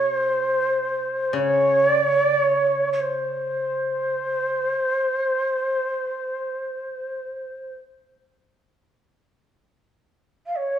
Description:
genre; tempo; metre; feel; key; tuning
japanese traditional, Japanese chamber music; free time; none; none; unclear; A4 = 440 Hz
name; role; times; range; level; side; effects
breathy shakuhachi; melody; 0.0-10.8 s; C5 to F5; -21 LUFS; right 1 dB; none
koto; accompaniment; 0.0-4.7 s; C3 to Db3; -33 LUFS; left 5 dB; none
room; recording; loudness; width
wet recital hall reverb, RT60 1.6 s; none; -21 LUFS; side -9 dB against mid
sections
0.0-10.8 A section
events
none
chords
none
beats
free time

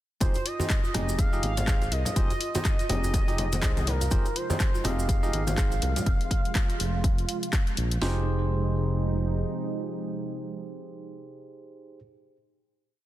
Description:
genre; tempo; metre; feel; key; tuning
afro house; 123 BPM; 4/4; swing 58% on 16ths; F minor; A4 = 440 Hz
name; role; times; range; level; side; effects
expressive synth lead; melody; 0.2-7.5 s; Bb4 to F5; -35 LUFS; right 1 dB; analog chorus, digital delay
buzzing marimba with soft mallets; arpeggios; 0.2-8.2 s; C4 to F5; -38 LUFS; equal; sidechain pumping, digital delay
bell-like tine electric piano; stabs; 0.2-12.0 s; Eb4 to Eb5; -37 LUFS; right 2 dB; sidechain pumping, digital delay
smooth synth bass; bass; 0.2-9.4 s; F1 to C2; -28 LUFS; equal; sidechain pumping
house drum kit; drums; 0.2-8.1 s; kick drum, snare drum; -25 LUFS; equal; none
house drum kit; drums; 0.2-8.0 s; handclaps, hi-hat, rim click; -34 LUFS; left 2 dB; none
congas; percussion; 0.2-6.0 s; none; -35 LUFS; left 3 dB; none
maracas; percussion; 0.2-6.1 s; none; -41 LUFS; right 2 dB; none
djembe; percussion; 0.4-6.0 s; none; -36 LUFS; right 2 dB; none
warm analog pad; sustained chords; 4.1-12.0 s; C3 to F4; -34 LUFS; right 2 dB; chorus, sidechain pumping
room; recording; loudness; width
light reverb; dense, heavily limited modern master; -24 LUFS; side -14 dB against mid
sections
0.2-8.0 drop; 8.0-11.9 final chord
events
drop 0.2-8.0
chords
0.2 Fm7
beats
| 0.21 0.70 1.19 1.68 | 2.16 2.65 3.14 3.63 | 4.11 4.60 5.09 5.58 | 6.07 6.55 7.04 7.53 | 8.02 8.50 8.99 9.48 | 9.97 10.46 10.94 11.43

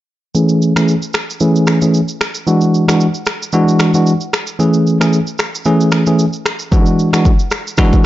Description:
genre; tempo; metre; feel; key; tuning
afrobeats; 113 BPM; 4/4; swing 55% on 16ths; A major; A4 = 440 Hz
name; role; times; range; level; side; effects
bell-like tine electric piano; accompaniment; 0.3-8.1 s; E3 to G#4; -12 LUFS; equal; fast stereo tremolo, low-pass filter
afro-pop drum kit; drums; 0.3-8.1 s; finger snaps, kick drum, rim click, shaker; -16 LUFS; equal; none
room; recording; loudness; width
light reverb; dark, warm production, nothing above 7.6 kHz; -11 LUFS; side -15 dB against mid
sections
0.3-8.1 A section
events
filter sweep on tine electric piano 0.3-8.1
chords
0.3 Amaj7; 2.5 E9; 4.6 Amaj7; 6.7 E9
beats
| 0.35 0.88 1.41 1.94 | 2.47 3.00 3.54 4.07 | 4.60 5.13 5.66 6.19 | 6.72 7.25 7.78

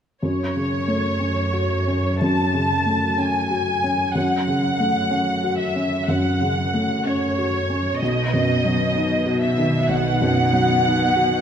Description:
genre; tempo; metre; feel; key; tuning
cinematic; 62 BPM; 4/4; rubato; F# dorian; A4 = 440 Hz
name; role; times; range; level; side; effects
warm symphonic violin section; melody; 0.2-11.4 s; C#5 to A5; -22 LUFS; equal; none
felt-muted upright piano; accompaniment; 0.2-11.4 s; B1 to F#4; -22 LUFS; left 1 dB; none
rich symphonic cello section; bass; 0.2-11.4 s; F#2 to B2; -25 LUFS; right 1 dB; none
room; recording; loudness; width
moderate scoring stage reverb, RT60 1.5 s; none; -18 LUFS; side -8 dB against mid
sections
0.2-11.4 A section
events
none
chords
0.2 F#m; 8.0 B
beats
| 0.23 1.21 2.21 3.18 | 4.15 5.11 6.08 7.05 | 8.01 8.95 9.89 10.84

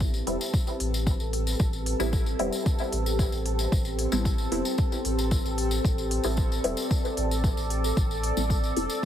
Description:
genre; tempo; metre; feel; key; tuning
dub techno; 113 BPM; 4/4; straight; A minor; A4 = 440 Hz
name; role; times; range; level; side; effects
deep dark ambient pad; sustained chords; 0.1-9.1 s; C4 to D5; -32 LUFS; left 1 dB; chorus, built-in reverb, sidechain pumping
filtered dub chord stab; stabs; 0.0-9.0 s; G3 to E4; -32 LUFS; equal; phaser, sidechain pumping, dub echo
warm sub bass; bass; 0.0-8.9 s; E1 to A1; -30 LUFS; equal; tube saturation, sidechain pumping
electronic kick drum; drums; 0.0-8.6 s; none; -26 LUFS; equal; none
tambourine; percussion; 0.0-9.0 s; none; -36 LUFS; left 4 dB; none
bubbling stepped-filter texture; texture; 0.2-9.1 s; A4; -36 LUFS; right 3 dB; chorus, built-in reverb, sidechain pumping
electronic hi-hat; drums; 0.3-8.9 s; none; -35 LUFS; left 1 dB; none
room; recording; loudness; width
light reverb, digital ambience; heavily compressed radio sound; -24 LUFS; side -10 dB against mid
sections
0.0-9.1 A section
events
filter sweep on synth stab 0.0-9.1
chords
0.0 Am9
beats
0.01 0.54 1.07 | 1.60 2.13 2.66 3.19 | 3.72 4.25 4.78 5.32 | 5.85 6.38 6.91 7.44 | 7.97 8.50 9.03

